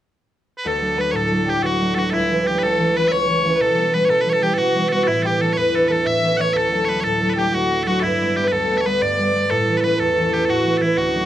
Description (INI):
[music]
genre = celtic folk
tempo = 122 BPM (dotted quarters)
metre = 9/8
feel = straight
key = D major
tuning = A4 = 444 Hz
[part]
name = loud bright bagpipes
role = melody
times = 0.6-11.3 s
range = E4 to F#5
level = -22 LUFS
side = right 2 dB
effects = none
[part]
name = warm fiddle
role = second line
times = 0.6-11.3 s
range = E4 to E5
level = -22 LUFS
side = left 6 dB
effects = none
[part]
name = concert harp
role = accompaniment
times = 0.7-11.3 s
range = C#2 to D4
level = -19 LUFS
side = right 2 dB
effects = none
[sound]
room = moderate studio reverb, RT60 0.7 s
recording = dry, close 1970s-style studio recording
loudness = -16 LUFS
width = side -12 dB against mid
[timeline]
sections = 0.6-11.3 A section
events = none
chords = 0.0 N.C.; 0.6 D; 2.1 A/C#; 3.6 Em/B; 5.1 Asus4; 6.1 A; 6.5 D; 8.0 Gadd9; 9.5 A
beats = 0.15 | 0.64 1.14 1.63 | 2.12 2.61 3.11 | 3.60 4.09 4.58 | 5.07 5.57 6.06 | 6.55 7.04 7.53 | 8.03 8.52 9.01 | 9.50 10.00 10.49 | 10.98